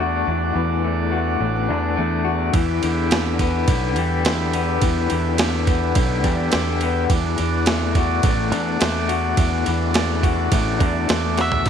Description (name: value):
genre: psychedelic rock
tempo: 105 BPM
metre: 4/4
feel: straight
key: unclear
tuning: A4 = 440 Hz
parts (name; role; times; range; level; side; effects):
- combo organ; sustained chords; 0.0-11.7 s; D4 to E5; -27 LUFS; right 8 dB; lush chorus
- electric guitar through a small old amp; riff; 0.0-11.7 s; E2 to F#4; -23 LUFS; left 12 dB; tremolo
- fuzz fingered electric bass; bass; 0.0-11.7 s; A1 to E2; -23 LUFS; right 2 dB; overdrive
- breakbeat sampler-style drum kit; drums; 2.5-11.7 s; crash cymbal, hi-hat, kick drum, ride cymbal, snare drum, toms; -22 LUFS; right 2 dB; none
- octave-fuzz lead guitar; melody; 11.4-11.7 s; E5; -21 LUFS; right 2 dB; distortion
room: moderate echo chamber reverb, RT60 1.8 s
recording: 1960s-style stereo with parts hard left and right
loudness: -18 LUFS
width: side -8 dB against mid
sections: 0.0-11.7 A section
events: drum fill 11.4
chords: 0.0 D; 2.5 Em7; 7.1 D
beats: | 0.27 0.83 1.40 1.97 | 2.54 3.11 3.68 4.25 | 4.82 5.38 5.96 6.52 | 7.09 7.66 8.23 8.80 | 9.37 9.94 10.51 11.08 | 11.65